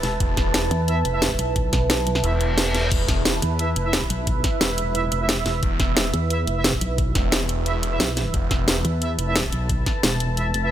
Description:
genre	dark technical drum and bass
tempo	177 BPM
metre	4/4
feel	straight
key	unclear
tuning	A4 = 439 Hz
part	deep dark ambient pad	sustained chords	0.0-10.7 s	E4 to A5	-27 LUFS	right 3 dB	chorus, built-in reverb, sidechain pumping
part	pulsing pluck wobble bass	bass	0.0-10.7 s	E1 to E2	-24 LUFS	equal	chorus
part	drum and bass drum kit	drums	0.0-10.6 s	crash cymbal, hi-hat, snare drum	-23 LUFS	equal	studio ambience
part	phased detuned saw bass	bass	0.2-3.4, 5.6-8.8 s	E1	-24 LUFS	equal	phaser, tube saturation
part	electronic kick drum	drums	0.2-9.9 s	none	-24 LUFS	equal	studio ambience
part	warm brass ensemble	stabs	0.9-10.7 s	E4 to E5	-31 LUFS	right 3 dB	tape echo
part	reverse cymbal	sound effects	2.4-2.9 s	none	-30 LUFS	left 1 dB	none
room	light reverb, digital ambience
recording	none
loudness	-19 LUFS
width	side -11 dB against mid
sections	0.0-10.7 A section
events	kick drops out 2.2-2.9; reverse cymbal 2.4-2.9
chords	0.0 E5

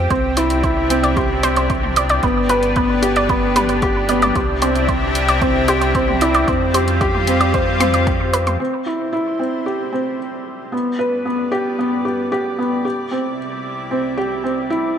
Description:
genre	piano and strings electronica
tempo	113 BPM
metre	4/4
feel	straight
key	C major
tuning	A4 = 438 Hz
part	lush unison pad	sustained chords	0.0-15.0 s	C2 to D5	-23 LUFS	left 1 dB	chorus, sidechain pumping
part	felt-muted upright piano	riff	0.0-15.0 s	B3 to C5	-19 LUFS	equal	tape echo
part	round analog bass	bass	0.0-8.6 s	G1 to F2	-22 LUFS	equal	sidechain pumping
part	analog pluck	arpeggios	0.1-8.5 s	G4 to C6	-21 LUFS	right 2 dB	chorus, sidechain pumping, tape echo
part	deep house drum kit	drums	0.1-8.6 s	hi-hat, toms	-27 LUFS	equal	overdrive
part	electronic kick drum	drums	0.1-8.2 s	none	-23 LUFS	equal	overdrive
room	moderate concert hall reverb, RT60 2.3 s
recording	none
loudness	-15 LUFS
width	side -8 dB against mid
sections	0.0-8.6 A section; 8.6-15.0 B section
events	fade-in on analog synth pad 8.6-15.0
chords	0.1 Cadd9; 2.2 G; 4.4 Cadd9; 6.5 Fsus2; 8.6 Cadd9; 10.7 G; 12.8 Cadd9

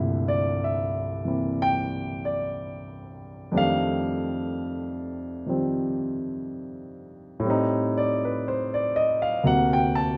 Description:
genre	solo jazz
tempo	61 BPM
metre	4/4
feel	swing 66% on 8ths, rubato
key	unclear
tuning	A4 = 440 Hz
part	dark grand piano	solo	0.0-10.2 s	C2 to A5	-26 LUFS	equal	none
room	moderate large studio reverb, RT60 1.3 s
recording	none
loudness	-26 LUFS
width	mono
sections	0.0-10.2 A section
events	grand piano solo 0.0-10.2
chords	0.0 C13; 3.5 F13; 7.5 Am7b5; 9.4 D7b13

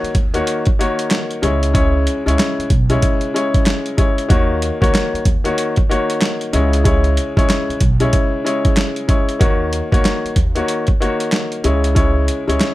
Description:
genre	hip hop, boom-bap hip-hop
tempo	94 BPM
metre	4/4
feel	swing 62% on 16ths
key	unclear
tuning	A4 = 440 Hz
part	bright upright piano	accompaniment	0.0-12.7 s	C#3 to C#5	-18 LUFS	left 2 dB	cassette tape, high-pass filter, low-pass filter
part	upright bass	bass	0.0-12.6 s	B1 to D#2	-19 LUFS	right 1 dB	none
part	boom bap sampler-style drum kit	drums	0.0-12.7 s	handclaps, hi-hat, kick drum, snare drum	-16 LUFS	equal	overdrive
room	little or no reverb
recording	none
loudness	-14 LUFS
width	side -16 dB against mid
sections	0.0-9.4 A section; 9.4-12.7 B section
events	none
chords	0.0 D#m7; 1.4 C#m; 4.3 D#m7; 6.5 C#m; 9.4 D#m7; 11.6 C#m

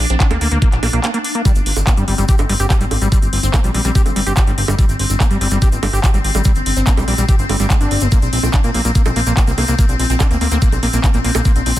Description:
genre	psychedelic trance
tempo	144 BPM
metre	4/4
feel	straight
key	G minor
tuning	A4 = 440 Hz
part	pulsing gated texture	sustained chords	0.0-11.8 s	C4 to D4	-23 LUFS	left 2 dB	chorus, built-in reverb, sidechain pumping
part	fat analog bass	bass	0.0-11.8 s	G1 to Bb2	-18 LUFS	equal	none
part	resonant blip pluck	second line	0.1-0.4, 3.4-7.1, 10.1-10.9 s	C4	-30 LUFS	right 2 dB	phaser, cassette tape, sidechain pumping, high-pass filter, tape echo
part	drum and bass drum kit	drums	0.1-11.8 s	bongos, handclaps, hi-hat	-22 LUFS	right 2 dB	none
part	overdriven acid bass	riff	0.2-11.5 s	G3 to G4	-23 LUFS	left 1 dB	auto-pan, sidechain pumping, ping-pong delay
part	electronic kick drum	drums	0.2-11.5 s	none	-13 LUFS	equal	none
part	tube shaker	percussion	1.5-11.8 s	none	-29 LUFS	left 1 dB	none
room	little or no reverb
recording	dense, heavily limited modern master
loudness	-13 LUFS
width	side -14 dB against mid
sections	0.0-11.8 A section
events	break 1.0-1.5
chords	0.0 Bbadd9; 1.5 G5; 8.1 Bbadd9

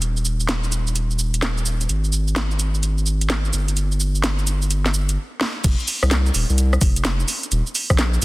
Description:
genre	UK garage, two-step garage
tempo	128 BPM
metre	4/4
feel	swing 64% on 16ths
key	F minor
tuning	A4 = 440 Hz
part	saturated sub bass	bass	0.0-8.2 s	Eb1 to C2	-20 LUFS	equal	none
part	garage drum kit	drums	0.0-8.2 s	crash cymbal, hi-hat, rim click, shaker, snare drum	-23 LUFS	right 1 dB	none
part	electronic kick drum	drums	5.6-8.0 s	none	-18 LUFS	equal	none
room	little or no reverb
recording	dense, heavily limited modern master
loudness	-18 LUFS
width	side -20 dB against mid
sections	0.0-5.6 A section; 5.6-8.2 B section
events	stop 5.2-5.6; drum fill 5.4; drop 5.6-8.2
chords	none

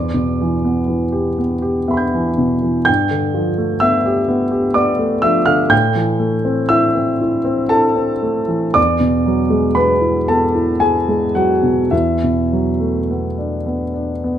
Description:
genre	classical, impressionist solo piano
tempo	50-64 BPM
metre	3/4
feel	rubato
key	unclear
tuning	A4 = 445 Hz
part	warm concert grand piano	solo	0.0-14.4 s	E2 to G6	-14 LUFS	equal	none
room	light reverb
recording	close, detailed microphones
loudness	-14 LUFS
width	side -10 dB against mid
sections	0.0-14.4 A section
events	none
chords	0.0 Em7; 2.9 G9; 5.7 Am7; 8.8 E9; 11.9 E9sus4

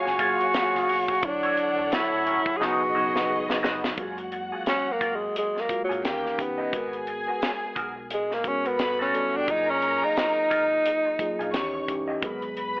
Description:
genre	lush 1970s-style soul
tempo	87 BPM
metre	4/4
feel	swing 58% on 16ths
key	F# major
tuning	A4 = 440 Hz
part	breathy tenor saxophone	melody	0.0-11.8 s	F#3 to G#4	-25 LUFS	equal	tape echo
part	warm studio string section	second line	0.0-12.8 s	B3 to C#6	-31 LUFS	equal	none
part	mellow tine electric piano	accompaniment	0.0-12.8 s	C#3 to E#5	-34 LUFS	equal	medium stereo tremolo
part	electric guitar through a small old amp	riff	0.1-12.8 s	A#3 to D#5	-32 LUFS	right 1 dB	wah
part	hollow-body short-scale fingered electric bass	bass	0.1-12.8 s	E1 to E2	-49 LUFS	equal	none
part	tight funk drum kit	drums	0.1-12.8 s	hi-hat, kick drum, snare drum	-30 LUFS	equal	none
part	muted trombone section	stabs	2.3-2.8 s	A2 to D#4	-28 LUFS	left 1 dB	none
room	moderate plate reverb, RT60 1.7 s, small room ambience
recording	telephone sound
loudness	-23 LUFS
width	side -25 dB against mid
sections	0.0-4.0 A section; 4.0-12.8 B section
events	band accent 1.2-4.0; drum fill 2.6-4.0; tenor saxophone solo 4.0-12.8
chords	0.0 F#maj9; 1.2 Dmaj9; 2.6 C#9sus4; 4.0 F#maj9; 6.0 D#7b9; 6.7 G#m9; 8.8 Gmaj9; 9.5 F#maj9; 11.5 D#7b9; 12.2 G#m9

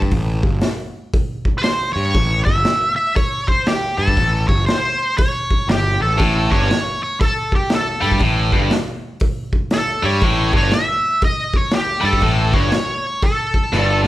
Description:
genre	blues rock power trio and southern rock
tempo	119 BPM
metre	4/4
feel	swing 63% on 8ths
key	A mixolydian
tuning	A4 = 440 Hz
part	fuzz picked electric bass	bass	0.0-14.1 s	G1 to G2	-20 LUFS	equal	overdrive
part	raw garage drum kit	drums	0.0-14.1 s	hi-hat, kick drum, snare drum	-19 LUFS	equal	none
part	octave-fuzz lead guitar	melody	1.6-14.0 s	G4 to E5	-19 LUFS	equal	wah, distortion
part	tight distorted guitar	riff	6.2-14.1 s	G2 to G3	-19 LUFS	equal	distortion
room	light reverb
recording	band playing live in one room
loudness	-15 LUFS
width	side -15 dB against mid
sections	0.0-14.1 A section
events	drum fill 13.7-14.1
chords	0.0 A

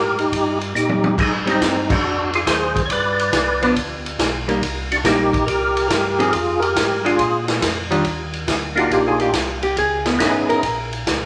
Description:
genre	soul jazz organ trio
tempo	140 BPM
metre	4/4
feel	swing 68% on 8ths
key	Eb major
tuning	A4 = 440 Hz
part	percussive tonewheel organ	melody	0.0-10.6 s	Bb3 to D5	-21 LUFS	equal	slow rotary speaker, chorus vibrato
part	mellow tonewheel organ	bass	0.0-11.3 s	Ab1 to Bb2	-32 LUFS	equal	slow rotary speaker
part	swinging big-band drum kit	drums	0.2-11.2 s	crash cymbal, hi-hat, kick drum, ride cymbal, snare drum, toms	-24 LUFS	equal	none
part	archtop guitar, miked and amplified	accompaniment	1.5-10.9 s	Eb3 to Bb4	-23 LUFS	equal	none
room	wet large studio reverb, RT60 1.1 s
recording	none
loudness	-19 LUFS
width	mono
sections	0.0-8.0 A section; 8.0-11.3 B section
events	drum fill 0.7-1.2; band accent 1.8; hollow-body jazz guitar solo 8.0-11.3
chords	0.3 Eb; 1.2 Abmaj7; 2.9 G; 4.6 Cm7; 6.3 Fm; 7.2 Bb; 8.0 Ebmaj9; 9.8 Dbm7; 10.6 Gb (rootless)

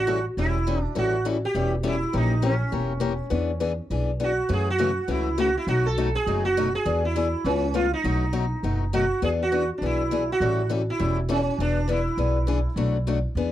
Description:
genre	acoustic string swing (jazz manouche)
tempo	203 BPM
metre	4/4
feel	swing 59% on 8ths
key	E mixolydian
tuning	A4 = 441 Hz
part	sitar	melody	0.0-13.0 s	C#4 to A4	-26 LUFS	right 2 dB	none
part	upright bass	bass	0.0-13.5 s	E1 to F#2	-26 LUFS	right 1 dB	none
part	picked steel-string acoustic guitar	accompaniment	0.1-13.5 s	B2 to B4	-27 LUFS	left 5 dB	none
room	small room ambience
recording	dry, close 1970s-style studio recording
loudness	-22 LUFS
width	side -12 dB against mid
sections	0.0-9.2 A section; 9.2-13.5 A section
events	none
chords	0.0 A7; 2.1 A#dim7; 3.3 E7; 4.5 F#m7; 5.7 B7; 6.9 E7; 7.5 C#aug7; 8.0 B7; 9.2 E7; 10.4 A7; 11.6 E7; 12.8 Bm7

